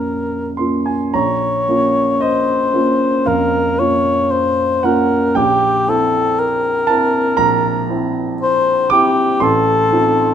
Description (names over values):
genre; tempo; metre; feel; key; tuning
classical, romantic duo for cor anglais and grand piano; 52-61 BPM; 4/4; rubato; unclear; A4 = 440 Hz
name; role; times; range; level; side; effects
mellow cor anglais; melody; 0.0-10.3 s; G4 to Db5; -16 LUFS; left 2 dB; none
warm grand piano; accompaniment; 0.0-10.3 s; A1 to D6; -16 LUFS; right 2 dB; none
room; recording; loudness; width
light reverb; close, detailed microphones; -13 LUFS; side -9 dB against mid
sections
0.0-1.1 A section; 1.1-10.3 A section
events
none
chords
0.0 Bbm; 5.4 C7/Bb; 9.4 F7/A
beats
0.01 | 1.15 2.22 3.28 4.32 | 5.37 6.39 7.40 8.42 | 9.42